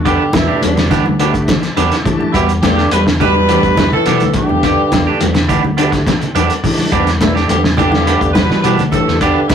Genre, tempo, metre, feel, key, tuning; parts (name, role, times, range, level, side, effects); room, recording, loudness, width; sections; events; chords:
afrobeat; 105 BPM; 4/4; straight; E minor; A4 = 441 Hz
trombone with bucket mute; second line; 0.0-9.5 s; G2 to G3; -20 LUFS; right 2 dB
bright tonewheel organ; accompaniment; 0.0-9.2 s; A3 to A5; -23 LUFS; equal; slow rotary speaker, overdrive, chorus vibrato
fingered electric bass; bass; 0.0-9.5 s; D2 to E3; -18 LUFS; left 1 dB
warm horn section; melody; 0.1-9.5 s; D4 to B4; -18 LUFS; left 1 dB
clear trombone section; second line; 0.1-9.5 s; D2 to B2; -25 LUFS; equal
semi-hollow electric guitar; arpeggios; 0.1-9.5 s; B2 to A3; -22 LUFS; left 6 dB
electric guitar at the edge of break-up; stabs; 0.1-9.5 s; B3 to G4; -19 LUFS; right 6 dB
cloth-damped thuddy drum kit; drums; 0.1-9.5 s; hi-hat, kick drum, snare drum; -17 LUFS; equal
congas; percussion; 0.3-9.5 s; -21 LUFS; equal
wet studio reverb, RT60 0.5 s; rough rehearsal-room recording, warm saturation; -11 LUFS; side -8 dB against mid
0.0-9.5 A section
tonewheel organ fill 1.2-2.3, 5.8-6.9
0.0 Em7